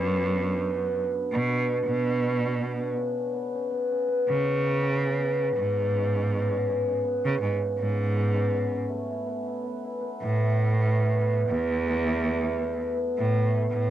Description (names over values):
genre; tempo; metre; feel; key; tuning
folktronica; 81 BPM; 4/4; swing 56% on 16ths; unclear; A4 = 438 Hz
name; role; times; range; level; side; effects
cimbalom; arpeggios; 0.0-13.9 s; B2 to E4; -27 LUFS; equal; low-pass filter, tape echo
clear cello; bass; 0.0-13.9 s; E2 to C#3; -26 LUFS; right 2 dB; none
room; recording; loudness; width
moderate studio reverb, RT60 0.6 s; home recording on cassette; -24 LUFS; side -12 dB against mid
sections
0.0-13.9 A section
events
none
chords
0.0 Bm; 3.0 C#5; 8.9 Asus2